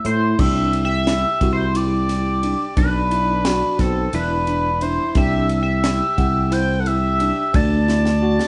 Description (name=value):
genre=progressive instrumental, band music in an uneven meter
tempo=176 BPM (eighths)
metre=7/8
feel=straight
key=unclear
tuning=A4 = 441 Hz
part: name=sync lead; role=melody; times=0.0-8.5 s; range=A4 to A5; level=-24 LUFS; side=equal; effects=chorus
part: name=tine electric piano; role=arpeggios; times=0.0-8.5 s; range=D4 to F#5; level=-30 LUFS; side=equal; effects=analog delay
part: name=sustaining fretless electric bass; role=bass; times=0.0-8.4 s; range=E1 to A2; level=-22 LUFS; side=equal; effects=none
part: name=tight funk drum kit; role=drums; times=0.0-8.5 s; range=crash cymbal, hi-hat, kick drum, ride cymbal, snare drum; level=-26 LUFS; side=equal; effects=none
part: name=breathy flugelhorn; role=second line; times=0.1-8.5 s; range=C4 to D5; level=-31 LUFS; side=equal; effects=none
room=moderate large studio reverb, RT60 0.9 s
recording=band playing live in one room, vinyl crackle, nothing above 10.6 kHz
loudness=-19 LUFS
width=mono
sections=0.4-8.5 A section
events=drum fill 7.9-8.5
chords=0.4 Cadd9; 2.8 D13; 5.2 Cadd9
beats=0.05 | 0.39 0.73 1.07 1.41 1.75 2.10 2.44 | 2.78 3.12 3.46 3.80 4.14 4.48 4.82 | 5.16 5.50 5.84 6.18 6.52 6.87 7.21 | 7.55 7.89 8.23